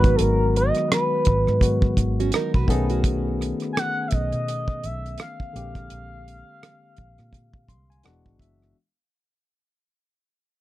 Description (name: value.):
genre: R&B, neo-soul.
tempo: 84 BPM.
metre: 4/4.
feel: swing 58% on 16ths.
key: G# minor.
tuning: A4 = 440 Hz.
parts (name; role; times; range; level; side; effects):
expressive synth lead; melody; 0.0-8.0 s; A4 to G#5; -25 LUFS; right 1 dB; chorus, tape echo.
barky tine electric piano; accompaniment; 0.0-8.8 s; D3 to B#5; -27 LUFS; left 4 dB; none.
vintage muted fingered electric bass; bass; 0.0-8.7 s; E1 to B2; -25 LUFS; equal; none.
damped 70s drum kit; drums; 0.0-8.7 s; hi-hat, kick drum, rim click; -22 LUFS; right 1 dB; none.
nylon-string guitar; second line; 2.2-3.9 s; C#4 to B4; -29 LUFS; right 8 dB; tape echo.
room: little or no reverb.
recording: dark, warm production.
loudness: -20 LUFS.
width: side -15 dB against mid.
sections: 0.0-8.8 A section.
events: fade-out 0.0-8.8; tine electric piano fill 7.3-8.8.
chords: 0.0 G#m7; 2.7 B13; 5.5 A#13; 8.0 E9.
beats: | 0.18 0.90 1.61 2.33 | 3.04 3.75 4.47 5.18 | 5.90 6.61 7.33 8.04.